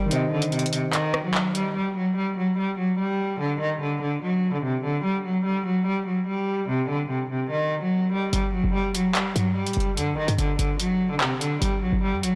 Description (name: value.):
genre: hip hop, drill.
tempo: 146 BPM.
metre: 4/4.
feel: half-time.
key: unclear.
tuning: A4 = 438 Hz.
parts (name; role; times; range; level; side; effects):
warm cello; melody; 0.0-12.4 s; C3 to G3; -26 LUFS; equal; tape echo.
tine electric piano; accompaniment; 0.0-1.8 s; Eb3 to Eb5; -29 LUFS; equal; overdrive.
short 808-style bass; bass; 0.0-0.1, 8.3-12.3 s; F#1 to Bb2; -29 LUFS; equal; none.
drill drum kit; drums; 0.1-1.6, 8.3-12.3 s; handclaps, hi-hat, rim click; -30 LUFS; equal; none.
room: light reverb, digital ambience.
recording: blown-out, overdriven recording, overdrive.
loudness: -25 LUFS.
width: mono.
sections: 0.0-1.8 A section; 1.8-8.3 B section; 8.3-12.4 C section.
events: kick muted 0.1-1.8.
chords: 0.1 Cm; 1.8 N.C.; 10.0 Dsus4; 11.6 Gm.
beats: | 0.11 0.52 0.93 1.34 | 1.75 2.17 2.58 2.99 | 3.40 3.81 4.22 4.63 | 5.04 5.45 5.86 6.28 | 6.69 7.10 7.51 7.92 | 8.33 8.74 9.15 9.56 | 9.97 10.38 10.79 11.21 | 11.62 12.03.